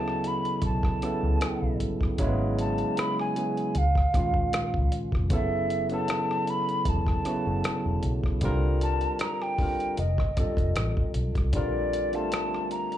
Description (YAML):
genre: R&B, neo-soul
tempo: 77 BPM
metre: 4/4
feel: swing 54% on 16ths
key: unclear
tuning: A4 = 442 Hz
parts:
  - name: mellow hollow jazz flute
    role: melody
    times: 0.0-13.0 s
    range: D5 to B5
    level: -30 LUFS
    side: equal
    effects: slapback echo, tape echo
  - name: barky tine electric piano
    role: accompaniment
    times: 0.0-13.0 s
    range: Bb2 to Eb5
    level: -30 LUFS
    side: right 1 dB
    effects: overdrive, slapback echo
  - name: vintage muted fingered electric bass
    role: bass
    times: 0.0-13.0 s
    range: E1 to Eb2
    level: -28 LUFS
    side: equal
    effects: none
  - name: dusty soul sampler-style drum kit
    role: drums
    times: 0.1-13.0 s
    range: hi-hat, kick drum, rim click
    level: -29 LUFS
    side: equal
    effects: none
room: light reverb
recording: live gig heard through the venue's PA, club reverb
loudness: -24 LUFS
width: side -12 dB against mid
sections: 0.0-13.0 A section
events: none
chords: 0.0 D69; 2.2 Amaj13/G#; 3.7 C#; 5.3 F#m7; 8.4 C5; 10.0 F7; 11.5 Bbmaj7